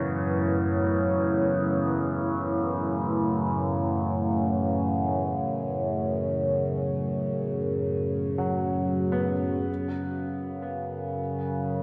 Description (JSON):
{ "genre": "dark ambient drone", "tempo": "free time", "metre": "none", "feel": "none", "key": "unclear", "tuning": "A4 = 440 Hz", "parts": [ { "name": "deep dark ambient pad", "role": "sustained chords", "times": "0.0-11.8 s", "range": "F#2 to C#5", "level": "-30 LUFS", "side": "equal", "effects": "chorus, built-in reverb" }, { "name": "bright baby grand piano", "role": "arpeggios", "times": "0.0-11.8 s", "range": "E2 to B3", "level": "-37 LUFS", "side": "equal", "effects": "tape echo" }, { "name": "overtone-sweeping drone", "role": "drone", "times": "0.0-11.8 s", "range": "F#2 to C#3", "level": "-30 LUFS", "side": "equal", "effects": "chorus, built-in reverb" } ], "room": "wet lush hall reverb, RT60 2.6 s", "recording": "dreamy mix soaked in reverb", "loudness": "-27 LUFS", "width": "mono", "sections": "0.0-9.7 A section; 9.7-11.8 B section", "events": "none", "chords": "0.0 F#m" }